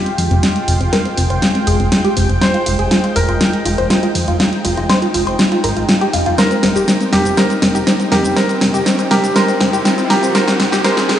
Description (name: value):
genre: progressive house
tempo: 121 BPM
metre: 4/4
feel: straight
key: F minor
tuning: A4 = 441 Hz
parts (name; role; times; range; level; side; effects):
- warm grand piano; melody; 0.0-11.2 s; G4 to C5; -20 LUFS; right 1 dB; dub echo
- shimmering ambient pad; sustained chords; 0.0-11.2 s; Ab3 to G5; -20 LUFS; equal; chorus, built-in reverb
- tight sequenced synth; arpeggios; 0.0-11.2 s; C4 to C5; -20 LUFS; equal; chorus, phaser, dub echo
- pop drum kit; drums; 0.1-11.2 s; cabasa, hi-hat, snare drum; -16 LUFS; equal; studio reverb
- fat analog bass; bass; 0.2-11.2 s; F1 to F2; -19 LUFS; equal; none
- riser; sound effects; 7.8-11.2 s; none; -24 LUFS; right 1 dB; none
room: moderate huge ambient reverb, RT60 4.6 s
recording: played on a big sound system in a bare room, stone room reverb, high-pass filter, nothing above 10.3 kHz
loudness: -12 LUFS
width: side -10 dB against mid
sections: 0.0-11.2 A section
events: build-up 0.0-11.2; drum fill 0.0-11.2; filter sweep on synth arpeggio sound 0.0-11.2; riser 7.8-11.2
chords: 0.0 Fmadd9; 6.4 Cm/F